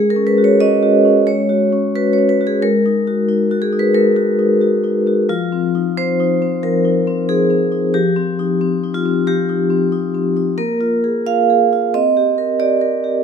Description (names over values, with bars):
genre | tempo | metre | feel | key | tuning
classical, contemporary piece for solo vibraphone | 90 BPM | 4/4 | rubato | unclear | A4 = 440 Hz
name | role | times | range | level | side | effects
vibraphone with medium mallets | solo | 0.0-13.2 s | F3 to E#5 | -13 LUFS | equal | none
room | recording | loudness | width
moderate recital hall reverb, RT60 1.4 s | close, detailed microphones | -13 LUFS | side -7 dB against mid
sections
0.0-13.2 A section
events
none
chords
0.0 G#7sus4; 2.6 D#m/G#; 5.3 Fm7; 10.6 A#5; 11.9 Cm7